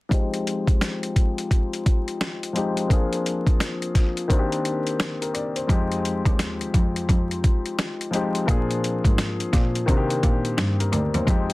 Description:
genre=hip hop, boom-bap hip-hop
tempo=86 BPM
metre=4/4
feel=swing 62% on 16ths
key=F dorian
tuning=A4 = 441 Hz
part: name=dark upright piano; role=accompaniment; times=0.1-11.5 s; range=Eb3 to D5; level=-26 LUFS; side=left 2 dB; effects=low-pass filter
part: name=boom bap sampler-style drum kit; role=drums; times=0.1-11.5 s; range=hi-hat, kick drum, snare drum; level=-22 LUFS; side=equal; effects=none
part: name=clear cello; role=bass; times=5.7-11.5 s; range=D2 to C3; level=-25 LUFS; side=equal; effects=none
room=little or no reverb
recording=dense, heavily limited modern master, vinyl crackle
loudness=-20 LUFS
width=side -20 dB against mid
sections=0.1-11.3 A section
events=filter sweep on upright piano 0.1-11.3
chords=0.1 Fm7; 2.9 Bb7; 4.3 Cm7; 5.7 Fm7; 8.5 Bb7; 9.9 Cm7

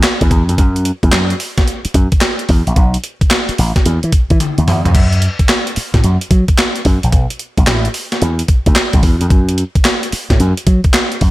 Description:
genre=R&B, new jack swing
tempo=110 BPM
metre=4/4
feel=swing 64% on 16ths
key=unclear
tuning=A4 = 440 Hz
part: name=gated 80s digital drum machine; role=drums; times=0.0-11.3 s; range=crash cymbal, handclaps, hi-hat, kick drum, snare drum, toms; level=-13 LUFS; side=equal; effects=gated reverb, gated reverb snare
part: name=slap bass with an envelope filter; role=bass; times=0.2-11.3 s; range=A1 to F#3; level=-13 LUFS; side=equal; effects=none
room=little or no reverb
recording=none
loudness=-11 LUFS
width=side -17 dB against mid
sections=0.0-4.9 A section; 4.9-11.3 B section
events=drum fill 4.4-4.9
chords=none

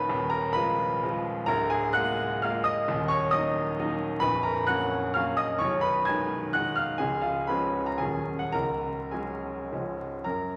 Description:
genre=classical, romantic triple-time dance for piano with dotted rhythms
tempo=98-142 BPM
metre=3/4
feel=rubato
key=Eb minor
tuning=A4 = 436 Hz
part: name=clear grand piano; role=solo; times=0.0-10.6 s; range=A#0 to G#6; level=-28 LUFS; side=equal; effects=none
room=wet recital hall reverb, RT60 1.4 s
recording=vinyl crackle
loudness=-28 LUFS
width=mono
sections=0.0-10.3 A section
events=none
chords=0.1 Fm7b5/Eb; 1.5 Bb7/D; 2.9 Ebm; 4.2 F#/A#; 5.6 G#m/B; 7.0 C#7; 8.0 D#m7; 8.5 C#sus4; 9.7 C#

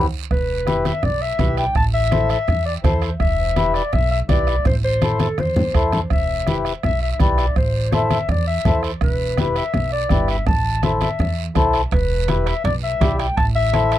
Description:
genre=latin, cumbia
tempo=165 BPM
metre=4/4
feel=straight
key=A minor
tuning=A4 = 440 Hz
part: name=mellow accordion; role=accompaniment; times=0.0-14.0 s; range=E4 to D5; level=-21 LUFS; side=left 3 dB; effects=none
part: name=upright bass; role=bass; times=0.0-14.0 s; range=E1 to E2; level=-22 LUFS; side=right 1 dB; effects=none
part: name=warm clarinet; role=melody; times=0.3-14.0 s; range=A4 to A5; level=-23 LUFS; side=left 2 dB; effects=tape echo
part: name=bombo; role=percussion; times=0.3-14.0 s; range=none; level=-22 LUFS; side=right 2 dB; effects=none
part: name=guiro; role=percussion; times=0.3-14.0 s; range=none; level=-35 LUFS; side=right 22 dB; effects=none
part: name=congas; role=percussion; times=0.7-13.9 s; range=none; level=-23 LUFS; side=left 2 dB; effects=none
part: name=timbales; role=percussion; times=11.9-14.0 s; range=none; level=-30 LUFS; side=right 8 dB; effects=none
room=little or no reverb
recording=dry, close 1970s-style studio recording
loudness=-17 LUFS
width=side -13 dB against mid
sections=0.3-14.0 A section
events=band accent 0.0-0.3; drum fill 5.2-6.1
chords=0.3 Em; 1.8 Am; 3.2 Em; 4.7 Am; 6.1 Em; 7.6 Am; 9.0 Em; 10.5 Am; 11.9 Em; 13.4 Am

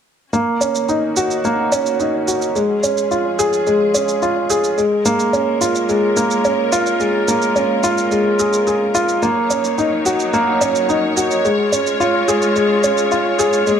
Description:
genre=piano and strings electronica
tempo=108 BPM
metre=4/4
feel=straight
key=unclear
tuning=A4 = 440 Hz
part: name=clear studio string section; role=sustained chords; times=0.3-13.8 s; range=Eb3 to Db5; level=-24 LUFS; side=left 2 dB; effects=none
part: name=warm upright piano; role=riff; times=0.3-13.8 s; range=Ab3 to Ab4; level=-15 LUFS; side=equal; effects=tape echo
part: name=shaker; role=drums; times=0.3-13.8 s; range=none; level=-25 LUFS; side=right 4 dB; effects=studio reverb
room=moderate recital hall reverb, RT60 1.3 s, small room ambience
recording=none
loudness=-14 LUFS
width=side -8 dB against mid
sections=0.3-13.8 A section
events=fade-in on string section 0.3-13.8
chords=0.3 Ebm7; 2.6 Db; 4.8 Bbm7; 9.2 Ebm7; 11.4 Db

